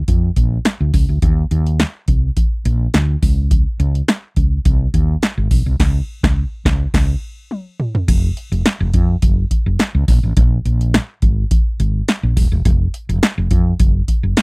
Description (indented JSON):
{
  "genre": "early-eighties boogie funk",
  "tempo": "105 BPM",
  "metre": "4/4",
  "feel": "straight",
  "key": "unclear",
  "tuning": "A4 = 440 Hz",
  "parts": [
    { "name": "woody fretless electric bass", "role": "bass", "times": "0.1-14.3 s", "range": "Eb1 to F2", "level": "-16 LUFS", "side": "equal", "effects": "none" },
    { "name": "electro analog drum machine", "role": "drums", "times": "0.1-14.4 s", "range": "crash cymbal, hi-hat, kick drum, snare drum, toms", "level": "-15 LUFS", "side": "equal", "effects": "none" }
  ],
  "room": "little or no reverb",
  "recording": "dry, close 1970s-style studio recording",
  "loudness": "-14 LUFS",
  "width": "side -38 dB against mid",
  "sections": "0.0-8.1 A section; 8.1-14.4 B section",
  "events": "band accent 5.8-8.1; drum fill 7.5-8.1",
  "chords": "none"
}